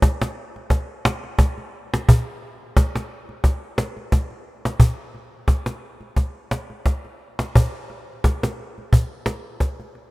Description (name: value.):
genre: world meditative.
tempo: 88 BPM.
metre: 4/4.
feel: swing 55% on 16ths.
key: none.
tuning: none.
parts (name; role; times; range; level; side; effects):
cajon; percussion; 0.0-10.0 s; none; -16 LUFS; equal; none.
room: little or no reverb.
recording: none.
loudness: -20 LUFS.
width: side -22 dB against mid.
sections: 0.0-10.1 A section.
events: none.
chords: none.